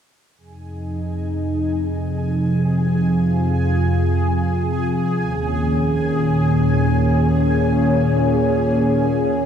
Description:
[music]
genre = ambient, sequencer-driven space music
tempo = free time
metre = none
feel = none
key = F minor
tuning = A4 = 441 Hz
[part]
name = lush unison pad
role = sustained chords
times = 0.4-9.5 s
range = Eb2 to Ab4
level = -17 LUFS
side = equal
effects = chorus
[part]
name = bubbling stepped-filter texture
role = texture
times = 0.4-9.5 s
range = Ab4 to Ab5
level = -28 LUFS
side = equal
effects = chorus, built-in reverb
[sound]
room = wet huge ambient reverb, RT60 7.7 s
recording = none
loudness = -16 LUFS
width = side -8 dB against mid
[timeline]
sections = 0.4-9.5 A section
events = fade-in on synth texture 0.4-9.5; filter sweep on analog synth pad 0.4-9.5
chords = 0.4 Fm7; 5.2 Eb7sus4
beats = free time

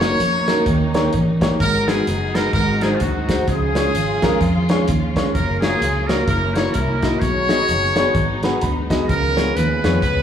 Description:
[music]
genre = uptempo gospel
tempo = 128 BPM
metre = 4/4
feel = swing 60% on 8ths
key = F# major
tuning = A4 = 440 Hz
[part]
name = trumpet with metal mute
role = melody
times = 0.0-10.2 s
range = E#4 to C#5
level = -23 LUFS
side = equal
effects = slapback echo
[part]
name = warm horn section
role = melody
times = 0.0-10.2 s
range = B3 to C#5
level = -26 LUFS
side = left 2 dB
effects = none
[part]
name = warm grand piano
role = accompaniment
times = 0.0-10.0 s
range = G#2 to B5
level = -22 LUFS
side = left 1 dB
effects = none
[part]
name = warm symphonic string section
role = sustained chords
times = 0.0-10.2 s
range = E#3 to E#4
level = -28 LUFS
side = equal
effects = none
[part]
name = fingered electric bass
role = bass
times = 0.0-10.2 s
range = F#1 to E#2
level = -22 LUFS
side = equal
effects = none
[part]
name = warm soul drum kit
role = drums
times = 0.0-10.2 s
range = hi-hat, kick drum, snare drum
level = -23 LUFS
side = equal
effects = none
[sound]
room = wet large studio reverb, RT60 1.4 s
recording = band playing live in one room, small room ambience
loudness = -16 LUFS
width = side -8 dB against mid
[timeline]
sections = 0.0-10.2 A section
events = grand piano fill 8.2-9.1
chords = 0.0 D#m7/F#; 0.7 D#7; 1.6 G#m7; 2.5 G#7; 3.5 C#; 5.3 F#maj7; 6.3 F#7; 7.2 B6; 9.1 C#7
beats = 0.20 0.67 1.14 | 1.61 2.08 2.54 3.01 | 3.48 3.95 4.42 4.88 | 5.35 5.82 6.29 6.75 | 7.22 7.69 8.16 8.62 | 9.09 9.56 10.03

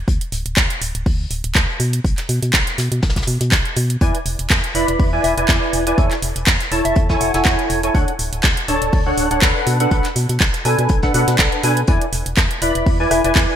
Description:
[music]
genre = piano house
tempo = 122 BPM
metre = 4/4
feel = swing 55% on 16ths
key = E mixolydian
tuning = A4 = 440 Hz
[part]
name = organ-like FM bass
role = bass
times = 0.0-13.5 s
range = D1 to B2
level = -21 LUFS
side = equal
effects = sidechain pumping
[part]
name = electronic kick drum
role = drums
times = 0.1-13.5 s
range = none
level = -18 LUFS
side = equal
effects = none
[part]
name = vintage brush drum kit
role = drums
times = 0.1-13.6 s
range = hi-hat, snare drum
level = -29 LUFS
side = left 2 dB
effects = sidechain pumping on hats, high-pass filter on hats, high-pass filter on snare, high-pass filter on room, gated reverb
[part]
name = house drum kit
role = drums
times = 0.2-13.5 s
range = handclaps, hi-hat, rim click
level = -20 LUFS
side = right 1 dB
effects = gated reverb
[part]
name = percussive organ stab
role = riff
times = 4.0-13.6 s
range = D4 to B5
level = -19 LUFS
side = equal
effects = ensemble chorus, sidechain pumping, digital delay
[part]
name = soft struck synth lead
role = melody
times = 5.2-7.9, 13.1-13.3 s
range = E5 to F#5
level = -24 LUFS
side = left 2 dB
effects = chorus, digital delay
[sound]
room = light reverb, studio ambience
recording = bright 1980s-style digital production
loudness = -15 LUFS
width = side -9 dB against mid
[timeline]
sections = 0.0-13.6 A section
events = none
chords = 0.0 N.C.; 4.0 E7; 6.0 Amaj7/E; 7.9 Dmaj7; 9.7 Bm7; 11.9 E7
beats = | 0.08 0.57 1.06 1.55 | 2.04 2.54 3.03 3.52 | 4.01 4.50 5.00 5.49 | 5.98 6.47 6.96 7.46 | 7.95 8.44 8.93 9.42 | 9.91 10.40 10.90 11.39 | 11.88 12.37 12.86 13.36

